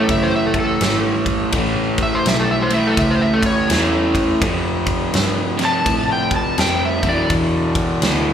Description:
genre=blues rock power trio and southern rock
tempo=83 BPM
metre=4/4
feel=swing 62% on 8ths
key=unclear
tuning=A4 = 440 Hz
part: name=overdriven slide guitar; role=melody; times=0.0-7.3 s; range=A4 to A5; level=-21 LUFS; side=equal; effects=slapback echo
part: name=crunchy overdriven guitar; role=riff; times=0.0-8.3 s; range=E2 to A3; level=-18 LUFS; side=equal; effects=slapback echo
part: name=vintage muted picked electric bass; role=bass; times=0.0-8.3 s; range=F#1 to A2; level=-25 LUFS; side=equal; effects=none
part: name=big rock drum kit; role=drums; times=0.1-8.2 s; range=kick drum, ride cymbal, snare drum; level=-22 LUFS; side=equal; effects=none
room=small room reverb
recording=live gig heard through the venue's PA, club reverb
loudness=-15 LUFS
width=side -9 dB against mid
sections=0.0-8.3 A section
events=none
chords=0.0 A; 4.4 F; 6.9 E5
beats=0.10 0.82 | 1.54 2.26 2.98 3.70 | 4.42 5.14 5.87 6.59 | 7.31 8.03

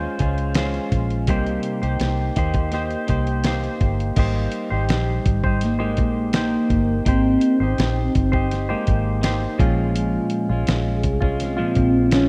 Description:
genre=indie pop, bedroom pop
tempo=83 BPM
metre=4/4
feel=straight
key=Ab major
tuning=A4 = 440 Hz
part: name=clean electric guitar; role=accompaniment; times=0.0-12.3 s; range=Bb2 to C5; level=-26 LUFS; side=equal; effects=subtle chorus, vibrato effect
part: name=vintage muted fingered electric bass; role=bass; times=0.0-12.3 s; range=G1 to Eb2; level=-26 LUFS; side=equal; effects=none
part: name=dusty soul sampler-style drum kit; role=drums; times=0.2-12.3 s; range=crash cymbal, hi-hat, kick drum, snare drum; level=-25 LUFS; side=equal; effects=none
part: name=warm velvety synth lead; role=melody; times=4.2-12.3 s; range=G3 to Db4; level=-25 LUFS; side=equal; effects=lush chorus
room=light reverb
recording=rough home demo mix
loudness=-21 LUFS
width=mono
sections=0.0-4.2 A section; 4.2-12.3 B section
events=none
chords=0.0 Dbmaj7; 1.3 Cm7; 4.2 Abmaj9; 9.6 Bbm7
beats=0.57 | 1.29 2.01 2.73 3.46 | 4.18 4.90 5.62 6.34 | 7.07 7.79 8.51 9.23 | 9.96 10.68 11.40 12.13

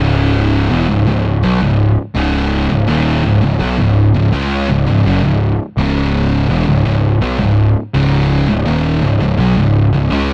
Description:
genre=metal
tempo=83 BPM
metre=4/4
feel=straight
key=unclear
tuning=A4 = 440 Hz
part: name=thick fuzz guitar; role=riff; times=0.0-10.3 s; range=C#2 to C#4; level=-20 LUFS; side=equal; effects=distortion
part: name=thick fuzz guitar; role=riff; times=0.0-10.3 s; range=C#2 to C#4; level=-17 LUFS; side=equal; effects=distortion
part: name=fuzz picked electric bass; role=bass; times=0.0-10.3 s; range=C#1 to C#2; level=-19 LUFS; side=equal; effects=overdrive
room=light reverb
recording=dark, warm production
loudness=-14 LUFS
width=mono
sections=0.0-10.3 A section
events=none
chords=0.0 C#5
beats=0.71 1.44 2.16 | 2.88 3.61 4.33 5.05 | 5.77 6.50 7.22 7.94 | 8.66 9.38 10.11

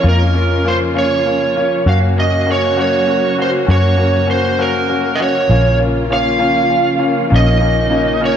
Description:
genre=pop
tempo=66 BPM (dotted quarters)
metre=6/8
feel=straight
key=Bb minor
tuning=A4 = 440 Hz
part: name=lead guitar through a small cranked amp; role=melody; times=0.0-8.4 s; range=Bb4 to F5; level=-16 LUFS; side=right 3 dB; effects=overdrive, analog delay
part: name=clear baby grand piano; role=accompaniment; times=0.0-8.4 s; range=Bb3 to Gb4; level=-19 LUFS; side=left 5 dB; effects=none
part: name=warm studio string section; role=sustained chords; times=0.0-8.4 s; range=Db3 to Gb4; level=-21 LUFS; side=right 1 dB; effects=none
part: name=vintage muted fingered electric bass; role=bass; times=0.0-8.4 s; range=Bb1 to Gb2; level=-16 LUFS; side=equal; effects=none
room=moderate lush hall reverb, RT60 2.5 s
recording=dark, warm production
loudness=-12 LUFS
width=side -8 dB against mid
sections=0.0-5.5 A section; 5.5-8.4 B section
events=none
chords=0.0 Bbm/F; 1.9 Gb; 5.5 Bbm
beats=| 0.04 0.95 | 1.86 2.77 | 3.68 4.59 | 5.50 6.41 | 7.32 8.22

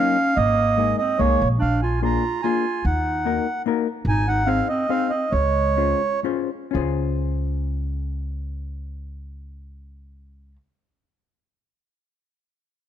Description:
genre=musette waltz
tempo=120-149 BPM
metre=3/4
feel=straight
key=Db major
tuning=A4 = 440 Hz
part: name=mellow accordion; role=melody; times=0.0-6.2 s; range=Db5 to Bb5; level=-22 LUFS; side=right 4 dB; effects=none
part: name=mellow clarinet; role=second line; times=0.0-6.2 s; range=Ab3 to F4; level=-26 LUFS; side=right 1 dB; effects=none
part: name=hollow-body jazz guitar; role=accompaniment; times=0.0-10.6 s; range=Gb3 to C5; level=-26 LUFS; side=left 10 dB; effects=none
part: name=upright bass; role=bass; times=0.4-10.6 s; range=Ab1 to Eb2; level=-24 LUFS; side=equal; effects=none
room=light reverb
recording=close, detailed microphones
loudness=-20 LUFS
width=side -10 dB against mid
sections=0.0-6.7 A section; 6.7-9.7 B section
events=slowing down 4.1-6.7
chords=0.4 Absus2; 1.6 Bb7; 2.8 Ebm; 4.1 Ab; 5.3 Dbmaj7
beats=| 0.37 0.78 1.20 | 1.61 2.03 2.44 | 2.85 3.25 3.66 | 4.07 4.47 4.89 | 5.32 5.77 6.24 | 6.74 7.24 7.73 | 8.22 8.71 9.21

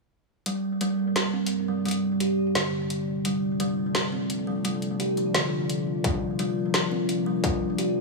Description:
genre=half-time drum and bass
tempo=172 BPM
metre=4/4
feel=half-time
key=G minor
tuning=A4 = 437 Hz
part: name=dark analog pad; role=sustained chords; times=0.5-8.0 s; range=G3 to D5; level=-30 LUFS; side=left 3 dB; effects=chorus, vintage 12-bit sampler grit, sidechain pumping
part: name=kalimba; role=arpeggios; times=0.5-8.0 s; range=D3 to G4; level=-27 LUFS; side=right 2 dB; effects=low-pass filter, tape echo
part: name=drum and bass drum kit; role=drums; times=0.5-7.9 s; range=hi-hat, snare drum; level=-28 LUFS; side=equal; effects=none
part: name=electronic kick drum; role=drums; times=6.0-7.5 s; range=none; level=-27 LUFS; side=left 2 dB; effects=distortion
room=moderate lush hall reverb, RT60 1.8 s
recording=small room ambience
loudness=-24 LUFS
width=side -1 dB against mid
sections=0.5-8.0 A section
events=filter sweep on analog synth pad 0.5-8.0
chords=0.5 Gm; 6.0 Bbsus2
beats=| 0.46 0.81 1.16 1.51 | 1.86 2.21 2.55 2.90 | 3.25 3.60 3.95 4.30 | 4.65 5.00 5.34 5.69 | 6.04 6.39 6.74 7.09 | 7.44 7.79

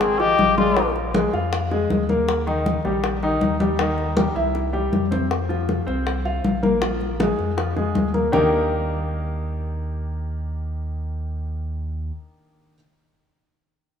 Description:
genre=Afro-Cuban jazz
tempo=159 BPM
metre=4/4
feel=straight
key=Eb major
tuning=A4 = 440 Hz
part: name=trombone with metal mute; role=melody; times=0.0-0.9 s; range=C4 to G4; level=-22 LUFS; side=left 5 dB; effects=none
part: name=concert flute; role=second line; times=0.0-0.9 s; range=Ab4 to Eb5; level=-27 LUFS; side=equal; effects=none
part: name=warm baby grand piano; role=accompaniment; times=0.0-12.8 s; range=Eb3 to F5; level=-23 LUFS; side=equal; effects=none
part: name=warm sub bass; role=bass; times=0.0-12.1 s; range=Ab1 to F2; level=-27 LUFS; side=equal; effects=none
part: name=bongos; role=percussion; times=0.0-8.4 s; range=none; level=-29 LUFS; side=left 6 dB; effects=none
part: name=congas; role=percussion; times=0.0-8.4 s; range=none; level=-25 LUFS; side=left 2 dB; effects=none
room=moderate lush hall reverb, RT60 2.8 s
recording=rough home demo mix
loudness=-20 LUFS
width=side -8 dB against mid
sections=0.0-5.3 A section; 5.3-8.3 B section; 8.3-11.4 C section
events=drum fill 4.6-5.3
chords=0.0 Fm9; 0.8 Bb5; 2.3 Eb; 4.6 C; 5.3 F5; 6.8 Bb5; 8.3 Ebmaj7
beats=0.01 0.39 | 0.77 1.14 1.52 1.90 | 2.28 2.66 3.04 3.42 | 3.79 4.17 4.55 4.93 | 5.31 5.68 6.06 6.44 | 6.82 7.20 7.58 7.95 | 8.33 8.71 9.09 9.46 | 9.84 10.22 10.60 10.98

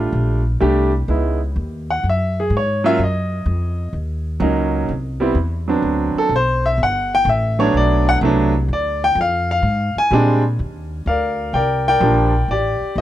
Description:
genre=jazz piano trio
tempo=126 BPM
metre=4/4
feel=swing 69% on 8ths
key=unclear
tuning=A4 = 440 Hz
part: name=clear grand piano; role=melody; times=0.0-13.0 s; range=F3 to Ab5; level=-17 LUFS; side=equal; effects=none
part: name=upright bass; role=bass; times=0.0-13.0 s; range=G1 to Bb2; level=-20 LUFS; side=equal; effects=none
room=small room ambience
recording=dry, close 1970s-style studio recording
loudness=-16 LUFS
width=side -13 dB against mid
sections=0.0-10.6 A section; 10.6-13.0 B section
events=grand piano solo 0.0-10.6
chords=0.0 Gm11; 1.1 C#m9; 2.0 F#sus2; 3.0 Ebm9; 4.9 Cmaj7; 5.8 D6; 6.8 Gmaj9; 8.7 Bb13; 10.6 Ebmaj9; 12.5 A7(no3)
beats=0.14 0.61 | 1.09 1.56 2.04 2.52 | 2.99 3.46 3.94 4.42 | 4.89 5.37 5.84 6.32 | 6.79 7.26 7.74 8.21 | 8.69 9.16 9.64 10.11 | 10.59 11.06 11.54 12.02 | 12.49 12.97

